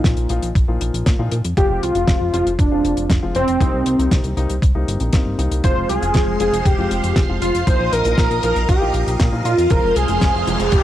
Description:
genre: italo disco.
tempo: 118 BPM.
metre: 4/4.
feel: straight.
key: F minor.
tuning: A4 = 441 Hz.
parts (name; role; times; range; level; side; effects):
dark concert grand piano; stabs; 0.0-10.6 s; Bb2 to F4; -26 LUFS; left 4 dB; none.
chorused synth bass; bass; 0.0-10.8 s; F1 to Bb2; -22 LUFS; equal; none.
damped 70s drum kit; drums; 0.0-10.8 s; hi-hat, snare drum; -24 LUFS; left 1 dB; none.
electronic kick drum; drums; 0.0-10.8 s; none; -17 LUFS; equal; overdrive.
wide unison lead; melody; 1.6-10.8 s; C4 to C5; -19 LUFS; right 1 dB; lush chorus, cassette tape, tape echo.
phased string machine; sustained chords; 5.6-10.8 s; Ab3 to Eb6; -26 LUFS; right 1 dB; ensemble chorus, phaser.
riser; sound effects; 10.1-10.8 s; none; -28 LUFS; right 1 dB; none.
room: small room reverb.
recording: dry, gritty hardware recording, cassette tape.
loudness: -15 LUFS.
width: side -12 dB against mid.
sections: 0.0-10.8 A section.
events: riser 10.1-10.8.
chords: 0.0 Bbsus4; 1.6 Fm; 3.6 Cm7; 5.6 Fm; 7.7 Bbsus4; 9.7 Fm.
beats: 0.04 0.55 1.06 | 1.57 2.08 2.59 3.10 | 3.60 4.11 4.62 5.13 | 5.64 6.15 6.66 7.16 | 7.67 8.18 8.69 9.20 | 9.71 10.21 10.72.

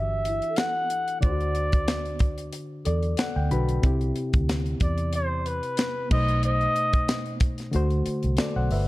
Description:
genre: lush 1970s-style soul.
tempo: 92 BPM.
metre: 4/4.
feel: swing 54% on 16ths.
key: unclear.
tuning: A4 = 440 Hz.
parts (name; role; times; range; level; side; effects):
breathy flugelhorn; melody; 0.0-7.4 s; B4 to F#5; -27 LUFS; equal; none.
bright reed electric piano; accompaniment; 0.0-8.9 s; B2 to B5; -30 LUFS; left 1 dB; overdrive.
vintage muted fingered electric bass; bass; 0.0-8.9 s; G1 to E2; -26 LUFS; equal; none.
tight funk drum kit; drums; 0.3-8.9 s; crash cymbal, hi-hat, kick drum, snare drum; -26 LUFS; equal; none.
celesta; texture; 0.3-7.9 s; E4 to C5; -38 LUFS; equal; none.
room: light reverb.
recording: dark, warm production.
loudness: -23 LUFS.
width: side -18 dB against mid.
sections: 0.0-8.9 A section.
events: reed electric piano fill 2.5-3.8.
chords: 0.0 Em9; 1.2 D7; 3.8 Cmaj7; 6.1 B7b9; 7.7 D7.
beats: 0.58 | 1.23 1.88 2.53 3.18 | 3.83 4.49 5.13 5.79 | 6.44 7.09 7.74 8.39.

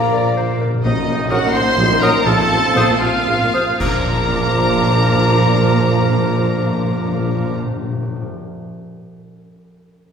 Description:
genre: classical, dramatic, fast romantic movement for symphony orchestra.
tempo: 74-86 BPM (dotted quarters).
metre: 6/8.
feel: straight.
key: Bb major.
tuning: A4 = 439 Hz.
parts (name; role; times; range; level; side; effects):
warm symphonic violin section; melody; 0.0-7.6 s; D5 to C6; -22 LUFS; left 2 dB; none.
bright concert flute; second line; 0.0-7.6 s; Bb5 to Eb6; -27 LUFS; left 2 dB; none.
clear clarinet; second line; 0.0-7.6 s; Bb4 to D5; -26 LUFS; left 2 dB; none.
clear oboe; second line; 0.0-7.6 s; Eb4 to D5; -25 LUFS; right 2 dB; none.
dark studio violin section; second line; 0.0-7.6 s; D4 to Bb5; -29 LUFS; left 2 dB; none.
mellow bassoon; accompaniment; 0.0-7.6 s; F3 to Gb3; -26 LUFS; right 2 dB; none.
warm symphonic viola section; accompaniment; 0.0-7.6 s; C3 to Bb4; -25 LUFS; equal; none.
warm French horn section; sustained chords; 0.0-7.6 s; F3 to Eb4; -26 LUFS; left 4 dB; none.
dark studio double bass section; bass; 0.0-7.6 s; Bb1; -22 LUFS; right 3 dB; none.
rich symphonic cello section; bass; 0.0-7.6 s; Bb2 to D4; -25 LUFS; right 3 dB; none.
warm tuba; bass; 0.0-7.6 s; Bb1; -25 LUFS; right 2 dB; none.
timpani; percussion; 0.0-8.3 s; Bb2; -24 LUFS; left 1 dB; none.
mellow trumpet; stabs; 0.8-7.6 s; Eb4 to C5; -23 LUFS; right 1 dB; none.
tam-tam, clash cymbals and concert bass drum; percussion; 0.8-4.8 s; none; -28 LUFS; equal; none.
room: wet scoring stage reverb, RT60 1.6 s.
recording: recorded in a church or concert hall.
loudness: -14 LUFS.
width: side -7 dB against mid.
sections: 0.8-3.8 A section; 3.8-6.8 B section.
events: timpani fill 0.0-0.8; slowing down 0.1-3.8; band accent 0.8-1.3, 3.8-4.3.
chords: 0.0 Bb; 0.8 Ebm/Bb; 2.3 F7/Bb; 3.8 Bb.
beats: 0.15 | 0.85 1.55 | 2.27 3.02 | 3.81 4.56 | 5.31 6.06.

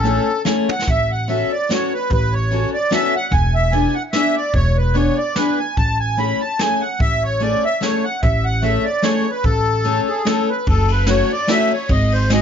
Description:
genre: musette waltz.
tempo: 147 BPM.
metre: 3/4.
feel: swing 54% on 8ths.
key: A major.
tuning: A4 = 440 Hz.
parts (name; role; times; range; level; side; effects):
accordion; melody; 0.0-12.4 s; G#4 to B5; -20 LUFS; equal; light tremolo tuning, plate reverb.
picked steel-string acoustic guitar; accompaniment; 0.0-12.4 s; G#3 to A4; -20 LUFS; left 3 dB; none.
upright bass; bass; 0.0-12.4 s; E1 to A1; -18 LUFS; equal; none.
jazz brush drum kit; drums; 0.0-12.4 s; hi-hat, kick drum, ride cymbal, snare drum, toms; -22 LUFS; equal; none.
room: moderate small room reverb, RT60 0.5 s.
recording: nothing above 7.5 kHz.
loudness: -15 LUFS.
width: side -8 dB against mid.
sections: 0.9-10.7 A section; 10.7-12.4 B section.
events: drum fill 0.7.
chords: 0.0 Amaj7; 0.9 A69; 3.3 E7; 5.8 Amaj7; 10.7 F#m7; 11.9 G#7.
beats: 0.05 0.46 | 0.88 1.29 1.70 | 2.10 2.51 2.91 | 3.31 3.72 4.13 | 4.54 4.95 5.36 | 5.77 6.18 6.59 | 7.00 7.41 7.82 | 8.22 8.63 9.03 | 9.44 9.85 10.26 | 10.68 11.09 11.49 | 11.90 12.31.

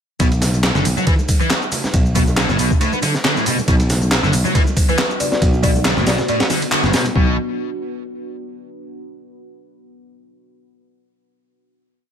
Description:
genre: breakbeat, breaks.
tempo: 138 BPM.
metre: 4/4.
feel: swing 54% on 16ths.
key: B minor.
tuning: A4 = 440 Hz.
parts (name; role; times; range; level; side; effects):
overdriven electric guitar; riff; 0.2-7.4 s; A2 to B3; -21 LUFS; equal; vintage 12-bit sampler grit, ping-pong delay.
picked electric bass; bass; 0.2-7.4 s; F#1 to B1; -18 LUFS; equal; none.
breakbeat sampler-style drum kit; drums; 0.2-7.3 s; kick drum, ride cymbal, snare drum; -18 LUFS; equal; studio ambience.
garage drum kit; drums; 0.2-7.1 s; handclaps, hi-hat, shaker; -23 LUFS; equal; studio ambience.
congas; percussion; 0.3-7.1 s; none; -27 LUFS; right 3 dB; none.
deep dark ambient pad; sustained chords; 4.5-7.4 s; B3 to F#4; -28 LUFS; equal; chorus, built-in reverb, vintage 12-bit sampler grit, sidechain pumping.
folk marimba with medium mallets; melody; 4.9-6.7 s; B4 to D5; -24 LUFS; left 2 dB; telephone sound, ping-pong delay.
room: little or no reverb.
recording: none.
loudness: -14 LUFS.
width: side -8 dB against mid.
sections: 0.2-7.2 drop; 7.2-8.9 final chord.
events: drop 0.2-7.2; band accent 6.7.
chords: 0.2 Bm.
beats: | 0.20 0.64 1.07 1.51 | 1.94 2.38 2.81 3.25 | 3.68 4.11 4.55 4.98 | 5.42 5.85 6.29 6.72 | 7.16.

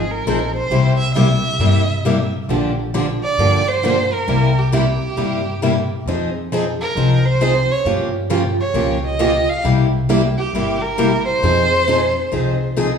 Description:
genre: acoustic string swing (jazz manouche).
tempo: 134 BPM.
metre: 4/4.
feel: swing 65% on 8ths.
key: F minor.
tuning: A4 = 438 Hz.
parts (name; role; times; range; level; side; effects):
clear violin; melody; 0.0-12.7 s; G4 to F5; -20 LUFS; right 2 dB; none.
picked plugged-in steel-string acoustic guitar; accompaniment; 0.0-12.9 s; C3 to Ab4; -23 LUFS; right 3 dB; none.
picked steel-string acoustic guitar; accompaniment; 0.0-12.9 s; C3 to Ab4; -20 LUFS; left 4 dB; none.
upright bass; bass; 0.0-13.0 s; G1 to G2; -20 LUFS; left 1 dB; none.
room: wet large studio reverb, RT60 1.3 s.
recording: band playing live in one room, studio ambience.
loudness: -15 LUFS.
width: side -6 dB against mid.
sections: 0.0-13.0 A section.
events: none.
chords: 0.0 Fm7; 0.7 C7; 2.5 Gm7/Bb; 4.3 C7; 6.1 Fm7; 7.9 Gm7b5; 9.6 C7; 11.4 Fm7.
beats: 0.26 | 0.70 1.15 1.60 2.04 | 2.49 2.94 3.38 3.83 | 4.28 4.72 5.17 5.62 | 6.06 6.51 6.96 7.41 | 7.85 8.30 8.75 9.19 | 9.64 10.09 10.54 10.98 | 11.43 11.88 12.32 12.77.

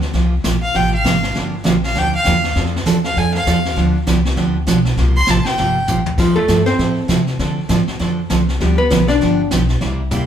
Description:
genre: country, western swing.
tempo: 199 BPM.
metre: 4/4.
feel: swing 60% on 8ths.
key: unclear.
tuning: A4 = 439 Hz.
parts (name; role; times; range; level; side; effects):
upright bass; bass; 0.0-10.3 s; G1 to D3; -19 LUFS; left 1 dB; none.
vintage brush drum kit; drums; 0.0-10.3 s; brushed snare drum, crash cymbal, hi-hat, kick drum, snare drum, toms; -23 LUFS; left 1 dB; none.
picked steel-string acoustic guitar; accompaniment; 0.1-10.2 s; C3 to A4; -18 LUFS; right 3 dB; none.
clear fiddle; second line; 0.6-5.9 s; F5 to C6; -19 LUFS; equal; none.
archtop guitar, miked and amplified; melody; 6.2-9.5 s; F3 to D5; -17 LUFS; left 2 dB; none.
room: moderate large studio reverb, RT60 1.1 s.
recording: band playing live in one room.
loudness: -14 LUFS.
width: side -9 dB against mid.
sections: 0.0-6.2 A section; 6.2-10.3 A section.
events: fiddle solo 0.0-6.2; drum fill 5.9-6.2, 10.1; hollow-body jazz guitar solo 6.2-10.3.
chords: 0.1 C7sus4; 1.3 Gm7; 2.6 Dm7; 3.8 G7; 5.0 C7sus4; 6.2 Fmaj9; 7.4 Dm7; 8.6 G7.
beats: | 0.14 0.44 0.74 1.04 | 1.35 1.65 1.95 2.25 | 2.56 2.86 3.16 3.46 | 3.76 4.07 4.37 4.67 | 4.97 5.27 5.58 5.88 | 6.18 6.48 6.79 7.09 | 7.39 7.69 8.00 8.30 | 8.60 8.90 9.21 9.51 | 9.81 10.11.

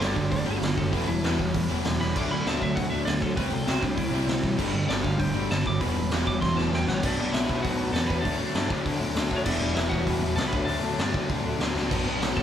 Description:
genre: punk rock.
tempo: 197 BPM.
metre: 4/4.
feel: straight.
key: D major from 7.0 s.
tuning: A4 = 442 Hz.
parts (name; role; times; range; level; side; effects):
lightly driven lead guitar; melody; 0.0-12.4 s; D4 to D6; -32 LUFS; equal; none.
crunchy overdriven guitar; riff; 0.0-12.4 s; G2 to E4; -31 LUFS; left 7 dB; none.
crunchy overdriven guitar; riff; 0.0-7.0, 11.9-12.4 s; E2 to D4; -32 LUFS; right 8 dB; none.
distorted electric guitar; riff; 0.0-12.4 s; E2 to D4; -32 LUFS; equal; overdrive.
fuzz picked electric bass; bass; 0.0-12.4 s; E1 to D3; -32 LUFS; right 1 dB; overdrive.
raw garage drum kit; drums; 0.0-12.4 s; crash cymbal, hi-hat, kick drum, snare drum; -28 LUFS; equal; none.
room: light reverb.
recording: band playing live in one room.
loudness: -23 LUFS.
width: side -9 dB against mid.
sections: 0.0-7.0 A section; 7.0-12.4 B section.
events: lead electric guitar solo 0.0-7.0; drum fill 2.0, 6.4-7.0, 11.7.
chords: 0.0 G5; 0.9 Em; 2.1 D; 3.4 C; 4.6 G5; 5.8 Em; 7.0 Bm; 8.2 D; 9.5 Em; 10.5 D; 11.9 Bm.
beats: 0.01 0.32 0.62 | 0.93 1.23 1.54 1.84 | 2.15 2.45 2.76 3.06 | 3.37 3.67 3.98 4.28 | 4.59 4.89 5.20 5.50 | 5.81 6.11 6.42 6.72 | 7.03 7.33 7.63 7.94 | 8.24 8.55 8.85 9.16 | 9.46 9.77 10.07 10.38 | 10.68 10.98 11.29 11.59 | 11.90 12.20.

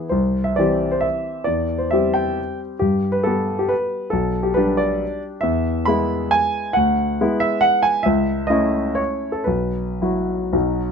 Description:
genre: classical, romantic triple-time dance for piano with dotted rhythms.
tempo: 109-150 BPM.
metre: 3/4.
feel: rubato.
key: C major, E major from 5.4 s.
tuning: A4 = 437 Hz.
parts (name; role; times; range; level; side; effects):
warm grand piano; solo; 0.0-10.9 s; B1 to B5; -18 LUFS; equal; none.
room: light reverb.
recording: nothing above 10.9 kHz.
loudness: -18 LUFS.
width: side -6 dB against mid.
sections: 0.1-10.9 A section.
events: none.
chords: 0.1 C; 1.5 C/E; 2.8 G; 4.1 G/B; 5.4 E; 6.8 E7/D; 8.1 A/C#; 9.5 Bsus4.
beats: | 0.11 0.59 1.04 | 1.47 1.93 2.38 | 2.81 3.25 3.71 | 4.13 4.57 5.02 | 5.44 5.88 6.33 | 6.76 7.20 7.64 | 8.06 8.50 8.98 | 9.48 10.01 10.53.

